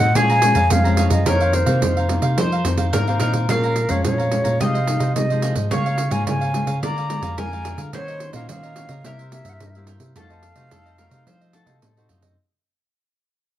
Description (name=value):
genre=samba and choro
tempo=108 BPM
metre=4/4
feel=straight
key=unclear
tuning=A4 = 439 Hz
part: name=wooden flute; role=melody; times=0.0-11.8 s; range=Bb4 to Bb5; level=-23 LUFS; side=equal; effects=none
part: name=bowl-back mandolin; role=second line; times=0.0-12.1 s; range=Gb4 to F5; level=-28 LUFS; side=left 1 dB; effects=none
part: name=cavaquinho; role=accompaniment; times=0.0-12.4 s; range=D4 to Bb5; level=-29 LUFS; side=right 4 dB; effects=none
part: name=nylon-string guitar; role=accompaniment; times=0.0-12.4 s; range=F2 to G4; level=-27 LUFS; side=left 3 dB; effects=none
part: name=mellow tine electric piano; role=bass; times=0.0-12.4 s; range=F2 to F3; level=-22 LUFS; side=equal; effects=none
part: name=pandeiro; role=percussion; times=0.2-12.4 s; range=none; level=-26 LUFS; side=right 4 dB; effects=none
room=light reverb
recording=dark, warm production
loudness=-17 LUFS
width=side -12 dB against mid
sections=0.0-12.4 A section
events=fade-out 0.0-12.4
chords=0.2 Bbm7; 1.3 F7sus4; 3.5 Bbm7; 4.6 Fm7/C; 5.7 Db6; 6.8 Bb7; 7.9 Ebm7; 9.0 C7; 10.2 F7b9